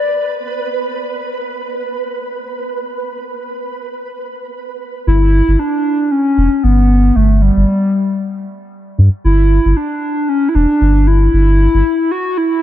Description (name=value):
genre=IDM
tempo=115 BPM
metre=4/4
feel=swing 56% on 16ths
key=G lydian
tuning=A4 = 440 Hz
part: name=warbly nostalgic lead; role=melody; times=0.0-0.6, 5.1-12.6 s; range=G3 to D5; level=-14 LUFS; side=equal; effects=chorus, dub echo
part: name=flickering grainy texture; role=texture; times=0.0-4.5 s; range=B4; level=-23 LUFS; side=right 3 dB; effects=built-in reverb
part: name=warm sub bass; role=bass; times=5.1-11.8 s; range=E1 to G2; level=-10 LUFS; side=equal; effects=none
room=little or no reverb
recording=none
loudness=-12 LUFS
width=side -12 dB against mid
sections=0.0-5.1 A section; 5.1-12.6 B section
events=none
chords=0.0 N.C.; 5.1 G5